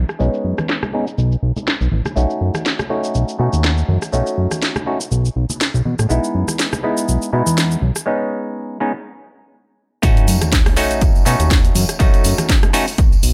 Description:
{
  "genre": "filtered disco house",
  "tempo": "122 BPM",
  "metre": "4/4",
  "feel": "swing 56% on 16ths",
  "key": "B mixolydian",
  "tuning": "A4 = 439 Hz",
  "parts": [
    { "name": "fat analog bass", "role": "bass", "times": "0.0-13.3 s", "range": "A1 to B2", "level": "-19 LUFS", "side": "equal", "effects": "sidechain pumping, low-pass filter" },
    { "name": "house drum kit", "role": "drums", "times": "0.1-13.3 s", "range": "hi-hat, rim click, shaker, snare drum", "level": "-24 LUFS", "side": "equal", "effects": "overdrive, low-pass filter on snare, small room reverb, sidechain pumping on perc, low-pass filter on perc, sidechain pumping on hats, low-pass filter on hats" },
    { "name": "tambourine and congas", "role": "percussion", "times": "0.1-13.3 s", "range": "none", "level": "-29 LUFS", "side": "equal", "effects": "sidechain pumping on perc, low-pass filter on perc" },
    { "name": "overdriven clav", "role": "accompaniment", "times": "0.2-12.9 s", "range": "G#3 to F#4", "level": "-23 LUFS", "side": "equal", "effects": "phaser, vintage 12-bit sampler grit, sidechain pumping, low-pass filter" },
    { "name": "electronic kick drum", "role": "drums", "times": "10.0-13.1 s", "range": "none", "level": "-16 LUFS", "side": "equal", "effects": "small room reverb" },
    { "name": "sub drop", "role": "sound effects", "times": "10.0-12.0 s", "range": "none", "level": "-25 LUFS", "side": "equal", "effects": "none" }
  ],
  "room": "light reverb",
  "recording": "none",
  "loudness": "-17 LUFS",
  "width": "mono",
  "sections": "0.0-10.0 A section; 10.0-13.3 B section",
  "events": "filter sweep 0.0-10.0; break 8.1-10.0; drop 10.0-13.3; impact 10.0-12.0",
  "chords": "0.0 Amaj9#11/B (rootless); 2.2 B7; 6.1 Emaj7/B; 7.8 B69; 10.0 B7"
}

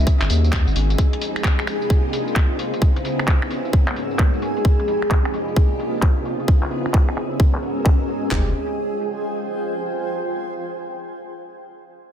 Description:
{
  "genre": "UK garage, two-step garage",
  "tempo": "131 BPM",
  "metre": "4/4",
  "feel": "swing 64% on 16ths",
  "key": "F minor",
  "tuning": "A4 = 440 Hz",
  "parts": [
    { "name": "soft string machine", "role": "sustained chords", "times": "0.0-8.5 s", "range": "F2 to Bb4", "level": "-28 LUFS", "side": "equal", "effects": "ensemble chorus, sidechain pumping" },
    { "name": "saturated sub bass", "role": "bass", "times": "0.0-1.0, 8.3-8.5 s", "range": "F1 to Eb2", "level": "-18 LUFS", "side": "equal", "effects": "sidechain pumping" },
    { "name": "granular cloud pad", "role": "texture", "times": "0.0-10.1 s", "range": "Db4 to Ab5", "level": "-25 LUFS", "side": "equal", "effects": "built-in reverb, sidechain pumping" },
    { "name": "garage drum kit", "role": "drums", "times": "0.1-8.4 s", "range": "handclaps, kick drum, toms", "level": "-17 LUFS", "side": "equal", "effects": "studio reverb, soft clipping on snare" },
    { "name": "garage drum kit", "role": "drums", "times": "0.1-8.3 s", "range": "finger snaps, handclaps, hi-hat, tambourine", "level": "-27 LUFS", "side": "equal", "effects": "low-pass filter on hats, studio reverb, low-pass filter on perc, soft clipping on snare, low-pass filter on snare" },
    { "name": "punchy chord stab", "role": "stabs", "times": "8.3-8.5 s", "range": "Ab3 to G4", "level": "-33 LUFS", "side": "equal", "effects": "chorus, digital delay" }
  ],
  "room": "light reverb, digital ambience",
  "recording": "dense, heavily limited modern master",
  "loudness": "-18 LUFS",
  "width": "side -9 dB against mid",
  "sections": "0.0-8.3 A section; 8.3-10.1 B section",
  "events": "filter sweep on drum 0.0-8.3",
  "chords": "0.1 Abm9; 1.0 Fm9; 1.7 Cm9; 2.6 Dbm9; 3.7 Abm9; 4.7 Fm9; 5.3 Cm9; 6.3 Dbm9; 7.4 Abm9; 8.3 Fm9"
}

